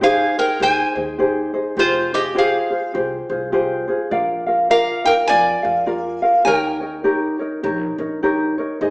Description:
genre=Hawaiian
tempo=102 BPM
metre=4/4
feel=swing 60% on 8ths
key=unclear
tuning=A4 = 439 Hz
part: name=metal-body resonator slide guitar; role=melody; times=0.0-7.4 s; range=F4 to Ab5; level=-17 LUFS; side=equal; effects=none
part: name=ukulele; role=accompaniment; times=0.0-8.9 s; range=Eb4 to F5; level=-18 LUFS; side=equal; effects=none
part: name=upright bass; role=bass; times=0.0-8.9 s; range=F1 to F2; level=-35 LUFS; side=equal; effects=none
room=wet large studio reverb, RT60 1.2 s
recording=band playing live in one room, small speaker sound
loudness=-16 LUFS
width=side -26 dB against mid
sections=0.0-8.9 A section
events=none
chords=0.0 Abmaj7; 1.8 Fmadd9; 4.1 Bb; 6.5 Eb7

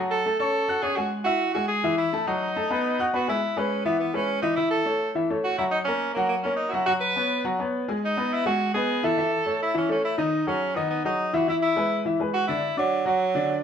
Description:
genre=latin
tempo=209 BPM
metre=4/4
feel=straight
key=E major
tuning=A4 = 441 Hz
part: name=clear baby grand piano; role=accompaniment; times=0.0-13.6 s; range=D3 to F#6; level=-25 LUFS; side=left 1 dB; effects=none
part: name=bright tenor saxophone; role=melody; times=0.1-13.6 s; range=F#3 to B4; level=-25 LUFS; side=right 2 dB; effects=none
room=wet studio reverb, RT60 0.8 s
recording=heard from further back in the room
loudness=-22 LUFS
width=side -8 dB against mid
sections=0.0-3.4 A section; 3.4-12.6 B section; 12.6-13.6 A section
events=none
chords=0.0 A6; 1.1 E; 2.3 B7; 3.4 E6; 4.6 A; 5.7 F#; 6.9 Bsus2; 8.0 Emaj7; 9.2 A; 10.3 Emaj13/D#; 11.5 E7; 12.6 D

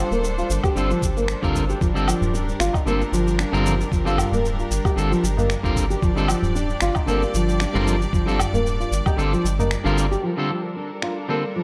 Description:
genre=organic downtempo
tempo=114 BPM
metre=4/4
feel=swing 54% on 16ths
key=G minor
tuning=A4 = 439 Hz
part: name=clear symphonic string section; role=sustained chords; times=0.0-11.6 s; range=G3 to D5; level=-32 LUFS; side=equal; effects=sidechain pumping, low-pass filter
part: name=nylon-string guitar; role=arpeggios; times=0.0-11.6 s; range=F3 to G4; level=-27 LUFS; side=equal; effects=low-pass filter, tape echo
part: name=round analog bass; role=bass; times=0.0-10.2 s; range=D1 to G1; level=-27 LUFS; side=equal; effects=sidechain pumping
part: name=electronic shaker, woodblock and finger snaps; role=drums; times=0.1-11.1 s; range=none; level=-32 LUFS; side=equal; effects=studio reverb
part: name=electronic kick drum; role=drums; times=0.6-9.2 s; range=none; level=-25 LUFS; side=equal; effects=studio reverb
part: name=clean electric guitar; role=accompaniment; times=0.8-11.4 s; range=D3 to Bb4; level=-28 LUFS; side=equal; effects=sidechain pumping, tape echo
part: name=tabla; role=percussion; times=2.0-10.2 s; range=none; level=-32 LUFS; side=equal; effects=none
room=light reverb, small room ambience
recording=dark, warm production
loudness=-22 LUFS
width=mono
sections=0.0-10.2 A section; 10.2-11.6 B section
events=kick drops out 9.7-10.2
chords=0.0 Gm7

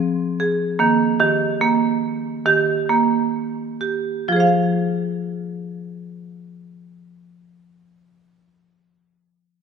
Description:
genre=world meditative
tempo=62-78 BPM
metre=4/4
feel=swing 54% on 16ths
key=F minor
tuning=A4 = 441 Hz
part: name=marimba with hard mallets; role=arpeggios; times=0.0-8.6 s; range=Eb3 to F5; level=-18 LUFS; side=right 2 dB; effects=none
room=wet echo chamber reverb, RT60 2.0 s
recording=dark, warm production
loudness=-17 LUFS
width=side -6 dB against mid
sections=0.0-4.3 A section; 4.3-8.2 B section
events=slowing down 0.0-4.3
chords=0.0 Fm; 0.8 Eb; 4.3 Fm

